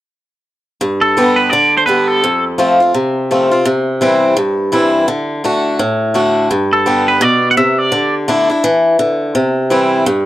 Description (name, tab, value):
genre	country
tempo	168 BPM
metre	4/4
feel	swing 60% on 8ths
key	G major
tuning	A4 = 442 Hz
part	picked swing-style acoustic guitar	accompaniment	0.8-10.3 s	F2 to G4	-12 LUFS	equal	none
part	twangy electric guitar	melody	1.0-2.4, 6.7-8.1 s	A4 to F#5	-12 LUFS	right 1 dB	none
room	small room ambience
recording	dry, close 1970s-style studio recording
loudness	-11 LUFS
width	side -14 dB against mid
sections	0.8-10.3 A section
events	none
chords	0.8 G; 2.2 F; 3.7 C; 5.1 D; 6.5 G; 7.9 Dsus2; 9.4 C